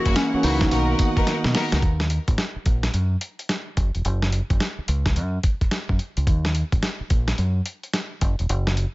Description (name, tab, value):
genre	R&B, new jack swing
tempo	108 BPM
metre	4/4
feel	swing 63% on 16ths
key	unclear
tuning	A4 = 440 Hz
part	soft struck synth lead	melody	0.0-1.6 s	C#4 to F#4	-26 LUFS	left 1 dB	chorus, tremolo, digital delay
part	tine electric piano	accompaniment	0.0-1.8 s	D#3 to F#4	-25 LUFS	right 3 dB	none
part	rich studio string section	sustained chords	0.0-1.8 s	D#4 to F#5	-32 LUFS	left 2 dB	none
part	rich studio string section	stabs	0.1-1.8 s	A#3 to A#4	-29 LUFS	left 3 dB	digital delay
part	deep dub fingered electric bass	bass	0.1-8.8 s	E1 to B2	-22 LUFS	equal	none
part	dusty soul sampler-style drum kit	drums	0.1-8.9 s	hi-hat, kick drum, snare drum, tambourine	-23 LUFS	equal	none
room	digital ambience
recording	nothing above 7.8 kHz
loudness	-20 LUFS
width	side -20 dB against mid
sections	0.0-1.8 A section; 1.8-8.9 B section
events	drum fill 1.3-1.8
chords	0.0 F#7; 0.7 Bmaj7; 1.8 D#m; 3.8 F#5; 6.3 D#m; 8.2 F#5